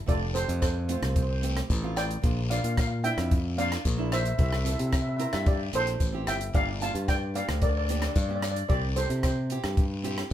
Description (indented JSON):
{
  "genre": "calypso",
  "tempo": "111 BPM",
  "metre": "4/4",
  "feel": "straight",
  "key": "unclear",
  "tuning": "A4 = 440 Hz",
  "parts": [
    { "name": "steel pan", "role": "melody", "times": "0.0-10.0 s", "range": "G4 to A5", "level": "-31 LUFS", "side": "equal", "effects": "none" },
    { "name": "nylon-string guitar", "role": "accompaniment", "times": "0.1-10.3 s", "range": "A3 to Bb4", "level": "-36 LUFS", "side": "right 5 dB", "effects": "none" },
    { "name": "modern bright fingered electric bass", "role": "bass", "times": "0.1-10.2 s", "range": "F1 to C3", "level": "-29 LUFS", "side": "equal", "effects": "none" },
    { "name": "compact cocktail drum kit", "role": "drums", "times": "0.1-10.3 s", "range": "hi-hat, kick drum, rim click", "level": "-28 LUFS", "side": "equal", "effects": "none" },
    { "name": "guiro", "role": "percussion", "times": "0.1-10.3 s", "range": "none", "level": "-41 LUFS", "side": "left 4 dB", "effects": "none" }
  ],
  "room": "moderate studio reverb, RT60 0.5 s",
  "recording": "band playing live in one room",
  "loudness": "-25 LUFS",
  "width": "side -11 dB against mid",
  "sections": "0.0-10.3 A section",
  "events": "none",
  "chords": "0.1 Fadd9; 2.2 Bb; 4.4 C; 6.5 Gm7; 8.7 C"
}